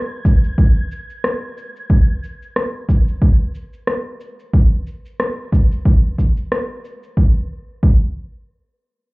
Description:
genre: sunset chillout.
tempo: 91 BPM.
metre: 4/4.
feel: swing 56% on 16ths.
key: unclear.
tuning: A4 = 440 Hz.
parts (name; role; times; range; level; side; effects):
wind-like tuned noise texture; texture; 0.0-1.9 s; G#6; -37 LUFS; right 1 dB; built-in reverb.
electronic kick drum; drums; 0.2-8.0 s; none; -12 LUFS; equal; none.
electronic cabasa and rim click; drums; 0.3-7.1 s; none; -23 LUFS; left 1 dB; none.
room: little or no reverb.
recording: heard muffled through a wall, club reverb, EQ.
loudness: -15 LUFS.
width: side -26 dB against mid.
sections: 0.0-7.2 A section; 7.2-9.1 B section.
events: none.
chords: none.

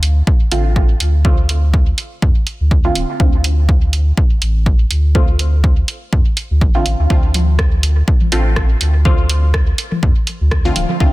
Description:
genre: dub techno.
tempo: 123 BPM.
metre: 4/4.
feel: swing 56% on 16ths.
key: D minor.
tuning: A4 = 440 Hz.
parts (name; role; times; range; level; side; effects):
soft dub sub bass; bass; 0.0-11.1 s; D1 to F2; -14 LUFS; equal; sidechain pumping.
punchy analog drum machine; drums; 0.0-10.9 s; hi-hat, rim click; -22 LUFS; right 2 dB; dub echo.
electronic kick drum; drums; 0.3-11.1 s; none; -14 LUFS; equal; none.
filtered dub chord stab; stabs; 0.5-11.1 s; D3 to F4; -22 LUFS; equal; chorus, phaser, sidechain pumping, dub echo.
electronic toms and congas; percussion; 7.3-11.0 s; none; -24 LUFS; left 1 dB; sidechain pumping on toms, sidechain pumping on perc, dub echo.
room: little or no reverb.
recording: dense, heavily limited modern master.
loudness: -12 LUFS.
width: side -19 dB against mid.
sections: 0.0-11.1 A section.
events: none.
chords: 0.0 Dm7.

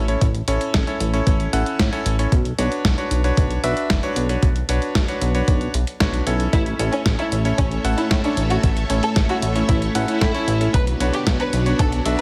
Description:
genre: italo disco.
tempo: 114 BPM.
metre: 4/4.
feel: straight.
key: B minor.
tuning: A4 = 440 Hz.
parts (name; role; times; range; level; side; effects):
bright electric grand piano; stabs; 0.0-12.2 s; C#4 to F#5; -27 LUFS; equal; digital delay.
chorused synth bass; bass; 0.0-12.2 s; F#1 to A2; -24 LUFS; equal; tube saturation.
dusty soul sampler-style drum kit; drums; 0.1-12.2 s; hi-hat, snare drum; -28 LUFS; equal; studio reverb.
electronic kick drum; drums; 0.2-11.9 s; none; -22 LUFS; equal; studio reverb.
warm studio violin section; melody; 6.5-12.2 s; C#4 to B4; -28 LUFS; equal; delay.
string machine, full ensemble; sustained chords; 6.5-12.2 s; A3 to E5; -29 LUFS; equal; ensemble chorus.
room: light reverb, digital ambience.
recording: heavily compressed radio sound.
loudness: -20 LUFS.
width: mono.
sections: 0.0-12.2 A section.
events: none.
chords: 0.0 A; 2.3 Bmadd9; 6.5 A; 10.7 Bmadd9.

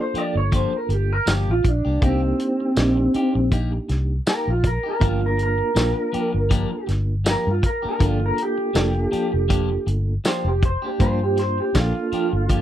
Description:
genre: straight-eighth soul blues.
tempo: 80 BPM.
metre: 4/4.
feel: swing 56% on 16ths.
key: G minor.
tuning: A4 = 442 Hz.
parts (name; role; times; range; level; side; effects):
electric guitar through a small old amp; melody; 0.0-12.6 s; C4 to D5; -23 LUFS; right 1 dB; lush chorus.
reed electric piano; accompaniment; 0.0-12.6 s; Bb3 to C5; -27 LUFS; right 2 dB; fast tremolo.
clean electric guitar; stabs; 0.1-12.6 s; F3 to G4; -30 LUFS; left 5 dB; phaser.
vintage muted fingered electric bass; bass; 0.1-12.6 s; F1 to G2; -22 LUFS; equal; none.
warm soul drum kit; drums; 0.1-12.6 s; hi-hat, kick drum, snare drum, tambourine; -22 LUFS; equal; none.
room: little or no reverb.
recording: dry, close 1970s-style studio recording.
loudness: -19 LUFS.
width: side -11 dB against mid.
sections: 0.0-12.6 A section.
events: clean electric guitar solo 0.0-12.6.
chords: 0.0 Gm7; 2.0 Cm7; 5.0 Gm7.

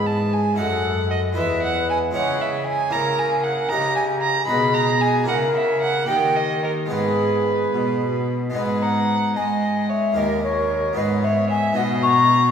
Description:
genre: classical, baroque-style sonata movement with continuo.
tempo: 76 BPM (dotted quarters).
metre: 6/8.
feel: straight.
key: G# minor.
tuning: A4 = 440 Hz.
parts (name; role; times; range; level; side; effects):
mellow baroque flute; melody; 0.0-12.5 s; G4 to C#6; -23 LUFS; left 3 dB; none.
warm violin; second line; 0.0-12.5 s; A#4 to B5; -23 LUFS; right 3 dB; none.
harpsichord; accompaniment; 0.0-12.5 s; D#2 to D#5; -28 LUFS; left 1 dB; none.
rich cello; bass; 0.0-12.5 s; D#2 to G#3; -24 LUFS; right 1 dB; none.
room: wet concert hall reverb, RT60 2.3 s.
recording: heard from further back in the room.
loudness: -18 LUFS.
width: side -7 dB against mid.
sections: 0.0-8.6 A section; 8.6-12.5 B section.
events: none.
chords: 0.0 E; 0.6 D#dim/F#; 1.4 E; 2.1 C#m; 2.9 A#dim/C#; 3.7 D#7/C#; 4.5 G#m/B; 5.3 A#dim/C#; 6.1 D#; 6.9 G#m; 10.2 D#7; 11.0 G#m; 11.8 B.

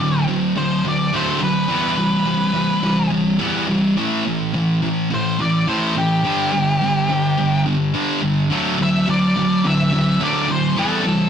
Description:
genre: rock.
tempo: 106 BPM.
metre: 4/4.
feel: straight.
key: unclear.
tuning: A4 = 440 Hz.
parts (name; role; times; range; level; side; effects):
octave-fuzz lead guitar; melody; 0.0-11.3 s; G4 to E5; -22 LUFS; left 1 dB; distortion.
thick fuzz guitar; riff; 0.0-11.3 s; G2 to B3; -17 LUFS; equal; distortion.
room: moderate studio reverb, RT60 0.6 s.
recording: rough rehearsal-room recording, tube saturation.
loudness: -16 LUFS.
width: side -8 dB against mid.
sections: 0.0-11.3 A section.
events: lead electric guitar solo 0.0-11.3.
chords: 0.0 D; 1.7 Em; 4.0 A5; 6.2 G5; 8.5 D; 10.8 Em.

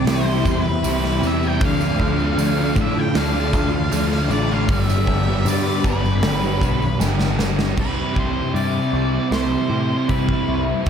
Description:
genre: rock, shoegaze and dream pop.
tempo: 78 BPM.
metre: 4/4.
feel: straight.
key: C major.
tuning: A4 = 438 Hz.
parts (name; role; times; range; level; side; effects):
octave-fuzz lead guitar; melody; 0.0-10.6 s; B4 to G5; -27 LUFS; left 1 dB; distortion, diffuse ambient delay.
phased string machine; sustained chords; 0.0-7.7 s; C4 to B5; -30 LUFS; right 1 dB; ensemble chorus, phaser.
fingerpicked twelve-string acoustic guitar; arpeggios; 0.0-10.9 s; E3 to G4; -30 LUFS; left 7 dB; lush chorus, diffuse ambient delay.
raw garage guitar; riff; 0.0-10.9 s; G2 to G4; -25 LUFS; right 8 dB; overdrive, reverse reverb.
thick fuzz guitar; riff; 0.0-10.9 s; G2 to D4; -23 LUFS; left 5 dB; distortion, ensemble chorus.
growling picked electric bass; bass; 0.0-10.9 s; G1 to C3; -23 LUFS; right 1 dB; overdrive.
big rock drum kit; drums; 0.1-10.9 s; crash cymbal, hi-hat, kick drum, snare drum; -25 LUFS; right 1 dB; none.
tambourine; percussion; 0.1-7.7 s; none; -38 LUFS; right 14 dB; none.
room: wet lush hall reverb, RT60 1.7 s, small room ambience.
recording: dreamy mix soaked in reverb.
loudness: -17 LUFS.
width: side -8 dB against mid.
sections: 0.0-7.8 A section; 7.8-10.9 B section.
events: drum fill 7.0-7.8.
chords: 0.0 Cmaj7; 1.6 Dm; 4.7 G; 7.8 C.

